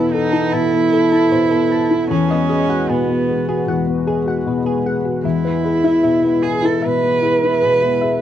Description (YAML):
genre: neoclassical piano and strings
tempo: 76 BPM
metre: 4/4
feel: rubato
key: E major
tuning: A4 = 440 Hz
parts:
  - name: rich cello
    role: second line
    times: 0.0-8.2 s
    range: B3 to B4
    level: -17 LUFS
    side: right 4 dB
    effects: none
  - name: felt-muted upright piano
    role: accompaniment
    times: 0.0-8.2 s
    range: E2 to A4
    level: -19 LUFS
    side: left 5 dB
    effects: none
  - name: chorused pulse-width pad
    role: sustained chords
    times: 0.0-8.2 s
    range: G#3 to B4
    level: -26 LUFS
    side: equal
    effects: none
  - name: harp-like synth pluck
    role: arpeggios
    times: 0.3-8.1 s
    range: E4 to A5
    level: -25 LUFS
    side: equal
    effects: chorus, tape echo
room: light reverb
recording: worn, warbling old tape, cassette tape, warbly pitch drift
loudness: -14 LUFS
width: side -10 dB against mid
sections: 0.0-8.2 A section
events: none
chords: 0.0 Asus2/E; 2.1 G#m7/E; 5.2 E